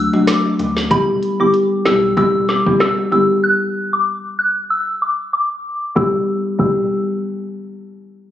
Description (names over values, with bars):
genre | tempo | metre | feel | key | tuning
dancehall | 95 BPM | 4/4 | swing 56% on 16ths | E minor | A4 = 441 Hz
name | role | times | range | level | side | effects
soft synth bell | melody | 0.0-6.9 s | B5 to F#6 | -19 LUFS | equal | chorus, digital delay
saturated sub bass | bass | 0.0-6.9 s | E1 to D2 | -30 LUFS | equal | none
marimba with medium mallets | accompaniment | 0.1-6.8 s | F#3 to G4 | -16 LUFS | left 1 dB | none
bongos | percussion | 0.1-6.9 s | none | -29 LUFS | left 5 dB | none
afro-pop drum kit | drums | 0.3-6.8 s | crash cymbal, hi-hat, kick drum, rim click, snare drum | -21 LUFS | equal | none
room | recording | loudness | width
light reverb | recorded on a phone in the room, studio reverb, low-pass filter, nothing above 11.0 kHz | -14 LUFS | side -11 dB against mid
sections
0.0-6.0 A section; 6.0-8.3 B section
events
filter sweep 0.0-6.0; break 3.4-6.0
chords
0.0 D; 0.9 Em; 3.4 N.C.; 6.0 Em